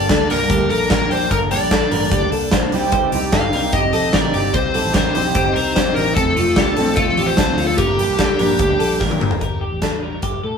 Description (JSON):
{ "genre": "jangly indie pop", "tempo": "148 BPM", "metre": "4/4", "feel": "straight", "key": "G minor", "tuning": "A4 = 440 Hz", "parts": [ { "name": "high-gain lead guitar", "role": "melody", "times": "0.0-9.0 s", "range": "G4 to F5", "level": "-21 LUFS", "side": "left 2 dB", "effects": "distortion, ping-pong delay" }, { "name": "fingerpicked steel-string acoustic guitar", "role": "accompaniment", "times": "0.0-9.4 s", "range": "F2 to A4", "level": "-23 LUFS", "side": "right 4 dB", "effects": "none" }, { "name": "hollow soft pad", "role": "sustained chords", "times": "0.0-9.4 s", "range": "C3 to A5", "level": "-28 LUFS", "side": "right 1 dB", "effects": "ensemble chorus" }, { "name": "twelve-string electric guitar", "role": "arpeggios", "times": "0.0-10.6 s", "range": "F4 to C5", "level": "-22 LUFS", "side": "left 2 dB", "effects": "warbly pitch drift" }, { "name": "vintage muted picked electric bass", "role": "bass", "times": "0.0-10.6 s", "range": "F1 to A2", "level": "-25 LUFS", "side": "equal", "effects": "none" }, { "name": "big rock drum kit", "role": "drums", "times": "0.1-10.3 s", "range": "hi-hat, kick drum, snare drum, toms", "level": "-19 LUFS", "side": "equal", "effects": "none" } ], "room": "moderate studio ambience, RT60 0.5 s", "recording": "band playing live in one room", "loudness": "-15 LUFS", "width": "side -6 dB against mid", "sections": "0.0-9.4 A section; 9.4-10.6 B section", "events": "drum fill 9.0-9.4", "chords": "0.0 Gmadd9; 2.7 Cm; 6.2 F; 7.8 Gm; 9.4 Gmadd9", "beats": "0.10 0.50 0.90 | 1.31 1.71 2.12 2.52 | 2.93 3.33 3.73 4.14 | 4.54 4.95 5.36 5.76 | 6.17 6.57 6.98 7.38 | 7.79 8.20 8.60 9.01 | 9.42 9.83 10.23" }